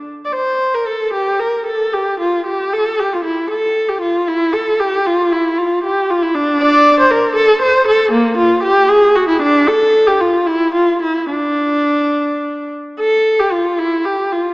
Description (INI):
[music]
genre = classical, baroque-style suite movement for unaccompanied viola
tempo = 77 BPM (dotted quarters)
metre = 6/8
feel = rubato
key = D minor from 6.6 s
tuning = A4 = 440 Hz
[part]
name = warm viola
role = solo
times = 0.0-14.5 s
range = Bb3 to D5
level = -12 LUFS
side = equal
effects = none
[sound]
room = wet church reverb, RT60 2.5 s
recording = small speaker sound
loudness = -12 LUFS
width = side -24 dB against mid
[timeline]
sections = 0.3-13.0 A section; 13.0-14.5 B section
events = none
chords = none